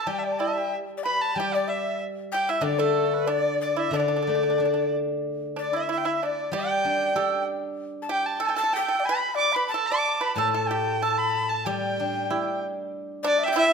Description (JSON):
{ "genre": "chinese traditional, Chinese chamber ensemble", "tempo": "94 BPM", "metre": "2/4", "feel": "rubato", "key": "D zhi mode", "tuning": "A4 = 440 Hz", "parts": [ { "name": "rich erhu", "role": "melody", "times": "0.0-13.7 s", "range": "A4 to D6", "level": "-27 LUFS", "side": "right 2 dB", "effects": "none" }, { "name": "breathy mellow tenor recorder", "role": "second line", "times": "0.0-13.7 s", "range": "A4 to B5", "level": "-29 LUFS", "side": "left 6 dB", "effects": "none" }, { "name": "pipa", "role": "second line", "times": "0.0-13.7 s", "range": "A3 to D5", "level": "-30 LUFS", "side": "right 7 dB", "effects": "none" }, { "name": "steel-string zither", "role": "accompaniment", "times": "0.1-13.6 s", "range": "A2 to G4", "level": "-28 LUFS", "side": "left 2 dB", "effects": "none" } ], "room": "moderate recital hall reverb, RT60 1.4 s", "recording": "none", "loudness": "-23 LUFS", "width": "side -5 dB against mid", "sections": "0.0-5.2 A section; 5.2-13.7 B section", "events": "none", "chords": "none" }